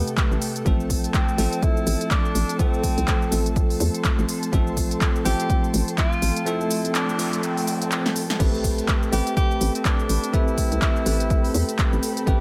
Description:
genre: deep house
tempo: 124 BPM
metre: 4/4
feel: swing 59% on 16ths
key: unclear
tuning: A4 = 436 Hz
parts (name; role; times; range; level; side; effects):
- warm tenor saxophone; melody; 0.0-12.4 s; B3 to G4; -32 LUFS; equal; delay
- airy breathy pad; sustained chords; 0.0-12.4 s; A3 to B5; -38 LUFS; equal; none
- bell-like tine electric piano; stabs; 0.0-12.4 s; C3 to B4; -29 LUFS; equal; sidechain pumping, delay
- hollow knocking FM bass; bass; 0.0-12.4 s; A1 to E2; -26 LUFS; equal; sidechain pumping
- granular cloud pad; texture; 0.0-12.4 s; A3 to C6; -37 LUFS; equal; built-in reverb, sidechain pumping
- deep house drum kit; drums; 0.1-12.4 s; crash cymbal, handclaps, hi-hat, shaker, snare drum; -30 LUFS; equal; none
- electronic kick drum; drums; 0.2-12.4 s; none; -24 LUFS; equal; none
- noise sweep; sound effects; 6.9-8.4 s; none; -38 LUFS; equal; none
room: light reverb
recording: none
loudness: -22 LUFS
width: mono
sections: 0.0-12.4 A section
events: noise sweep 6.9-8.4; drum fill 8.0-8.4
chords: 0.0 Am9; 0.7 F/A; 8.4 Am9

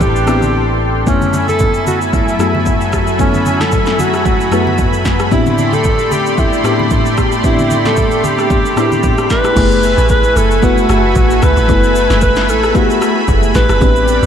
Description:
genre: amapiano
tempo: 113 BPM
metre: 4/4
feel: swing 55% on 16ths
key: unclear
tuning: A4 = 440 Hz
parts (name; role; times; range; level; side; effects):
- warm alto saxophone; melody; 0.0-14.3 s; C#4 to B4; -16 LUFS; equal; ping-pong delay
- FM electric piano with soft pad layer; accompaniment; 0.0-14.3 s; F#2 to G#5; -17 LUFS; left 2 dB; chorus
- lush unison pad; sustained chords; 0.0-14.3 s; F#3 to C6; -18 LUFS; equal; chorus, sidechain pumping
- fingered electric bass; bass; 0.0-1.0 s; A1; -16 LUFS; equal; none
- deep house drum kit; drums; 0.0-14.3 s; crash cymbal, kick drum, rim click, shaker, snare drum; -17 LUFS; equal; overdrive, vintage 12-bit sampler grit
- congas; percussion; 0.0-9.2 s; none; -23 LUFS; right 2 dB; none
- deep log drum bass; bass; 9.6-14.3 s; F#1 to C#2; -14 LUFS; equal; none
room: moderate huge ambient reverb, RT60 5.0 s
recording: dreamy mix soaked in reverb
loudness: -10 LUFS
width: side -8 dB against mid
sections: 0.0-9.6 A section; 9.6-14.3 B section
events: break 0.5-1.1; drop 9.6-14.3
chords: 0.0 Am11; 1.1 F#m11; 5.3 Am11; 9.6 F#m11

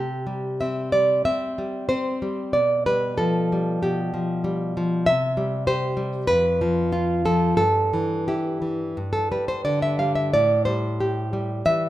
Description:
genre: romantic piece for solo classical guitar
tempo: 87-100 BPM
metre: 4/4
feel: rubato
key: C major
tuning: A4 = 438 Hz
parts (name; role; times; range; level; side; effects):
- nylon-string guitar; solo; 0.0-11.9 s; F2 to F5; -20 LUFS; equal; none
room: moderate recital hall reverb, RT60 1.4 s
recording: minimal, uncompressed stereo recording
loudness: -20 LUFS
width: side -14 dB against mid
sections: 0.0-11.9 A section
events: none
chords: 0.0 C; 2.6 G7/B; 5.1 C; 6.3 N.C.; 7.6 Emadd11/G; 9.0 G5; 10.3 Am7

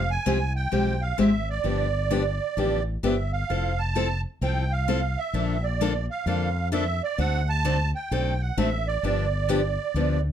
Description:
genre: acoustic string swing (jazz manouche)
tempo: 130 BPM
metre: 4/4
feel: swing 63% on 8ths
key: unclear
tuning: A4 = 440 Hz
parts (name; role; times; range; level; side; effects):
- musette accordion; melody; 0.0-10.2 s; D5 to A5; -29 LUFS; right 6 dB; none
- fretless electric bass; bass; 0.0-10.3 s; F1 to F2; -26 LUFS; equal; none
- picked steel-string acoustic guitar; accompaniment; 0.3-10.2 s; D3 to A4; -26 LUFS; left 3 dB; none
room: moderate club ambience, RT60 0.5 s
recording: dark, warm production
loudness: -23 LUFS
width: side -9 dB against mid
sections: 0.0-10.3 A section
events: none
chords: 0.0 Fmadd9; 1.6 G7; 3.5 Fmaj7; 5.3 Bbmaj7; 7.2 D7; 9.0 G7

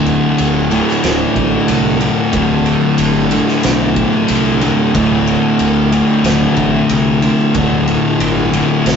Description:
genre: stoner and doom metal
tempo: 92 BPM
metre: 4/4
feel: straight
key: unclear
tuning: A4 = 440 Hz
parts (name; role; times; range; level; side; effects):
- thick fuzz guitar; riff; 0.0-9.0 s; D2 to D3; -14 LUFS; left 4 dB; distortion
- thick fuzz guitar; riff; 0.0-9.0 s; D2 to D3; -17 LUFS; right 6 dB; distortion
- fuzz fingered electric bass; bass; 0.0-9.0 s; D1 to C2; -22 LUFS; right 1 dB; overdrive
- oversized low-tuned drum kit; drums; 0.1-9.0 s; kick drum, ride cymbal, snare drum; -19 LUFS; right 1 dB; none
room: little or no reverb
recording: rough rehearsal-room recording, warm saturation, nothing above 7.8 kHz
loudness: -11 LUFS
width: side -7 dB against mid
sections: 0.0-9.0 A section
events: none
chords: 0.0 D5

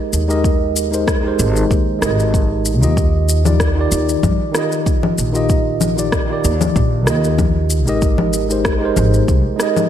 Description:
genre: sunset chillout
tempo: 95 BPM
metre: 4/4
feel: swing 54% on 16ths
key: Eb major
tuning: A4 = 442 Hz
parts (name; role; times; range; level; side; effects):
- tine electric piano; accompaniment; 0.0-9.9 s; Eb3 to Eb5; -18 LUFS; right 1 dB; auto-pan, digital delay, slapback echo
- upright bass; bass; 0.1-9.4 s; Ab1 to G2; -18 LUFS; equal; none
- electronic shaker, rim click and congas; drums; 0.1-9.9 s; none; -21 LUFS; left 3 dB; small room ambience, slapback echo
- electronic kick drum; drums; 0.4-9.4 s; none; -18 LUFS; equal; small room ambience
room: moderate lush hall reverb, RT60 1.7 s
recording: big arena sound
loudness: -14 LUFS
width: side -10 dB against mid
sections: 0.0-9.9 A section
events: none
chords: 0.0 Abmaj7; 3.0 Ebmaj9; 8.0 Abmaj7

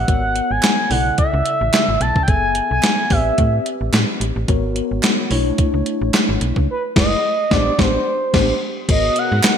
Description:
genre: early-eighties boogie funk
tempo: 109 BPM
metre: 4/4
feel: swing 56% on 16ths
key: unclear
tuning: A4 = 439 Hz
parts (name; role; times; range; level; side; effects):
- expressive synth lead; melody; 0.0-9.6 s; B4 to A5; -19 LUFS; equal; chorus
- mellow tine electric piano; accompaniment; 0.0-9.6 s; C#3 to E5; -24 LUFS; left 3 dB; medium stereo tremolo
- slap-like FM bass; bass; 0.0-9.4 s; F#1 to A2; -20 LUFS; equal; none
- crisp 8-bit digital drum machine; drums; 0.1-9.6 s; crash cymbal, hi-hat, kick drum, snare drum; -18 LUFS; equal; gated reverb
- group handclap; percussion; 0.6-9.6 s; none; -28 LUFS; right 5 dB; none
- string machine, violins; sustained chords; 8.9-9.6 s; B2 to A#4; -28 LUFS; left 1 dB; ensemble chorus
room: moderate lush hall reverb, RT60 1.9 s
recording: bright 1980s-style digital production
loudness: -15 LUFS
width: side -8 dB against mid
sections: 0.0-8.9 A section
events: band accent 6.7-8.9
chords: 0.1 G#m11; 0.9 Bm11; 2.3 F#m11; 3.1 Am11; 4.5 G#m11; 5.3 Bm11; 6.7 F#m11; 7.5 Am11; 8.9 G#m11

